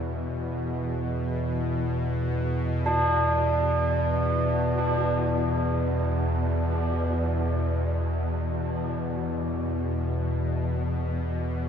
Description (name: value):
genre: dark ambient drone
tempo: free time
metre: none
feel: none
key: unclear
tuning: A4 = 441 Hz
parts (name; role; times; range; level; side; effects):
- bowed-like drone; drone; 0.0-11.7 s; E2 to B2; -25 LUFS; equal; built-in reverb
- tubular bells; arpeggios; 2.9-11.7 s; D4; -29 LUFS; right 1 dB; tape echo, shimmer reverb
room: wet lush hall reverb, RT60 2.7 s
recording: dreamy mix soaked in reverb, nothing above 11.0 kHz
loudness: -24 LUFS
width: side -8 dB against mid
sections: 0.0-11.7 A section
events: none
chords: 0.0 E7(no3)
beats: free time